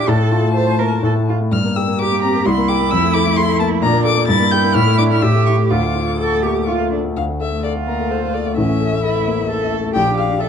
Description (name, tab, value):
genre	quick classical-period movement for piano trio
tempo	122-134 BPM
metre	3/4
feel	rubato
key	D minor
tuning	A4 = 441 Hz
part	warm violin	melody	0.0-10.5 s	Bb4 to A6	-22 LUFS	left 6 dB	none
part	rich cello	second line	0.0-10.5 s	C#4 to C5	-20 LUFS	right 8 dB	none
part	warm grand piano	accompaniment	0.0-10.5 s	A1 to D5	-16 LUFS	left 2 dB	none
room	light reverb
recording	dark, warm production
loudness	-14 LUFS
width	side -7 dB against mid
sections	0.0-7.2 A section; 7.2-10.5 A section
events	none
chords	0.1 Fadd11/A; 1.0 A5; 1.5 Gm; 2.5 C7; 2.9 F; 3.8 Bbmaj7; 4.3 Edim/G; 4.7 Dm/A; 5.2 A5; 5.7 Dm; 8.6 A; 10.0 Gm/Bb